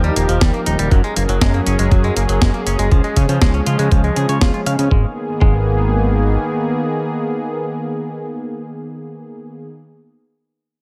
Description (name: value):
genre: italo disco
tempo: 120 BPM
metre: 4/4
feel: straight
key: G# dorian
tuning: A4 = 440 Hz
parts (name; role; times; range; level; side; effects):
- warm analog pad; sustained chords; 0.0-9.7 s; D#3 to A#4; -23 LUFS; equal; chorus
- direct-recorded clean electric guitar; arpeggios; 0.0-5.6 s; E#3 to E#5; -27 LUFS; equal; low-pass filter, tape echo
- fat analog bass; bass; 0.0-6.4 s; D#1 to C#3; -20 LUFS; equal; tube saturation
- clean 12-bit digital drum machine; drums; 0.0-4.9 s; hi-hat, snare drum; -25 LUFS; equal; none
- electronic kick drum; drums; 0.4-5.6 s; none; -17 LUFS; equal; none
room: light reverb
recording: none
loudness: -17 LUFS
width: mono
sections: 0.0-4.9 A section; 4.9-8.9 B section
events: none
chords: 0.0 D#add9; 0.9 F#add9; 2.9 C#; 4.9 G#madd9